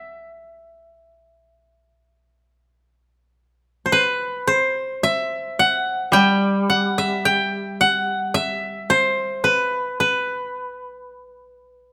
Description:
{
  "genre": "japanese traditional, Japanese chamber music",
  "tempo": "54 BPM",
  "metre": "4/4",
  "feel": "rubato",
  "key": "E hirajoshi",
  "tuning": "A4 = 443 Hz",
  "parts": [
    { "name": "koto", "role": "melody", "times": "0.0-11.9 s", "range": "B4 to G5", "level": "-21 LUFS", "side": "equal", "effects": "none" },
    { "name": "koto", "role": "accompaniment", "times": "6.1-9.4 s", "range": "G3", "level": "-25 LUFS", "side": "equal", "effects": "none" }
  ],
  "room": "light reverb",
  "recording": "close, detailed microphones",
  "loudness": "-20 LUFS",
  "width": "mono",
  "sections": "0.0-3.9 A section; 3.9-11.9 B section",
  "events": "none",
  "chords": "none",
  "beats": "0.52 1.64 2.78 | 3.92 5.04 6.13 7.24 | 8.34 9.43 10.50 11.58"
}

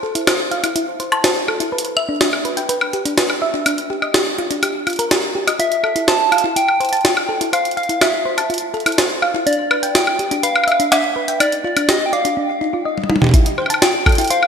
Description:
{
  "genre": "IDM",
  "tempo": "124 BPM",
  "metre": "4/4",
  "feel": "straight",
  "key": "F lydian",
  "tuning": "A4 = 439 Hz",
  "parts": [
    { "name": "thumb-piano-like synth pluck", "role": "arpeggios", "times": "0.0-14.4 s", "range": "D4 to A5", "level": "-21 LUFS", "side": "left 1 dB", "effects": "chorus, vintage 12-bit sampler grit, ping-pong delay" },
    { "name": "jungle sampler-style drum kit", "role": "drums", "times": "0.2-14.5 s", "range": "hi-hat, snare drum, toms, woodblock", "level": "-17 LUFS", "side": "equal", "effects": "studio reverb, gated reverb, digital delay" },
    { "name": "soft struck synth lead", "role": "melody", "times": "5.6-14.5 s", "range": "D5 to A5", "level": "-18 LUFS", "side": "equal", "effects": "chorus, digital delay" },
    { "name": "electronic kick drum", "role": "drums", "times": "13.3-14.2 s", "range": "none", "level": "-13 LUFS", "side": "equal", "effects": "studio reverb" },
    { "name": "pulsing gated texture", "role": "texture", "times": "13.4-14.5 s", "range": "G5", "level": "-28 LUFS", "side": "right 4 dB", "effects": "chorus, built-in reverb" }
  ],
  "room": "wet lush hall reverb, RT60 2.0 s",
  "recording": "bright 1980s-style digital production",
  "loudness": "-15 LUFS",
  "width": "side -7 dB against mid",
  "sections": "0.0-13.3 A section; 13.3-14.5 B section",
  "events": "filter sweep on synth arpeggio sound 0.0-13.3; drum fill 13.0-13.3",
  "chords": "0.0 Fmaj7 (rootless); 1.7 Em7; 3.7 Ebadd9; 5.6 Fmaj7; 9.5 Em7; 11.4 Ebmaj9; 13.3 F (rootless)",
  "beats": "0.27 0.76 1.24 | 1.73 2.21 2.69 3.18 | 3.66 4.14 4.63 5.11 | 5.60 6.08 6.56 7.05 | 7.53 8.02 8.50 8.98 | 9.47 9.95 10.43 10.92 | 11.40 11.89 12.37 12.85 | 13.34 13.82 14.30"
}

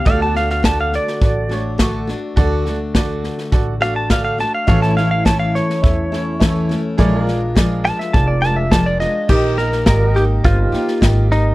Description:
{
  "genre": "honky-tonk and classic country",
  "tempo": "104 BPM",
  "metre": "4/4",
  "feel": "straight",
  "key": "D major",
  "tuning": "A4 = 440 Hz",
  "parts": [
    { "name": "direct-recorded clean electric guitar", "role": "melody", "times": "0.0-11.5 s", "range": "Eb4 to A5", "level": "-20 LUFS", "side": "equal", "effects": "none" },
    { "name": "picked steel-string acoustic guitar", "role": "accompaniment", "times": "0.0-11.5 s", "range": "A2 to G4", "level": "-21 LUFS", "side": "left 2 dB", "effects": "none" },
    { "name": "pedal steel guitar", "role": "sustained chords", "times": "0.0-11.5 s", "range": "E4 to Eb5", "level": "-29 LUFS", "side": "right 2 dB", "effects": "lush chorus" },
    { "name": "clear upright piano", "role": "accompaniment", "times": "0.1-11.4 s", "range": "Eb4 to C#6", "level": "-27 LUFS", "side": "right 5 dB", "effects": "none" },
    { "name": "upright bass", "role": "bass", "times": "0.1-11.5 s", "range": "F1 to E2", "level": "-20 LUFS", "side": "equal", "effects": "none" },
    { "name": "natural country drum kit", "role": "drums", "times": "0.1-11.4 s", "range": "crash cymbal, hi-hat, kick drum, snare drum", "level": "-17 LUFS", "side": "equal", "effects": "none" }
  ],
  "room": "little or no reverb",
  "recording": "dry, close 1970s-style studio recording",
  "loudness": "-14 LUFS",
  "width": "side -18 dB against mid",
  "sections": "0.0-9.3 A section; 9.3-11.5 B section",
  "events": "clean electric guitar solo 0.0-9.3",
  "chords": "0.1 D; 4.7 A; 7.0 Bb7; 9.3 Eb",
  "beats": "| 0.06 0.64 1.22 1.79 | 2.37 2.95 3.52 4.10 | 4.68 5.26 5.83 6.41 | 6.99 7.56 8.14 8.72 | 9.29 9.87 10.44 11.02"
}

